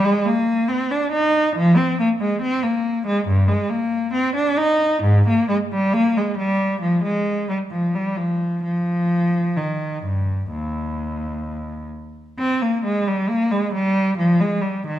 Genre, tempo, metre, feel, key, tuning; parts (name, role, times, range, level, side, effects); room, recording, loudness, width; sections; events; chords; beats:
classical, baroque-style suite movement for unaccompanied cello; 63-70 BPM; 4/4; rubato; Eb major; A4 = 436 Hz
rich cello; solo; 0.0-15.0 s; Eb2 to Eb4; -18 LUFS; equal
moderate recital hall reverb, RT60 1.4 s; dark, warm production; -18 LUFS; side -12 dB against mid
0.0-12.4 A section; 12.4-15.0 A section
0.68 | 1.54 2.40 3.25 4.12 | 5.03 5.93 6.81 7.72 | 8.64 9.58 10.53 11.44 | 12.38 13.29 14.20